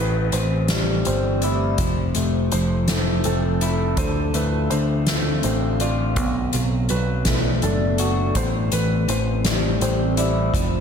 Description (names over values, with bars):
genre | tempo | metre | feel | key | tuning
post-rock | 55 BPM (dotted quarters) | 6/8 | straight | A minor | A4 = 440 Hz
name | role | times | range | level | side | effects
deep dark ambient pad | sustained chords | 0.3-10.8 s | D3 to F5 | -29 LUFS | right 1 dB | chorus, built-in reverb
electric guitar through a small old amp | arpeggios | 0.0-10.8 s | A2 to F#4 | -24 LUFS | left 2 dB | lush chorus, slapback echo
felt-muted upright piano | arpeggios | 0.0-10.8 s | A4 to D5 | -31 LUFS | right 2 dB | slapback echo
picked electric bass | bass | 0.0-10.8 s | F1 to D2 | -23 LUFS | equal | none
soft-mallet drum kit | drums | 0.3-10.7 s | hi-hat, kick drum, snare drum | -25 LUFS | equal | none
room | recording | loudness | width
moderate lush hall reverb, RT60 2.3 s | big arena sound | -18 LUFS | side -7 dB against mid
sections
0.0-10.8 A section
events
none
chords
0.0 Am7; 1.8 Fmaj7; 4.0 Dm7; 6.2 Bm7; 8.4 Am7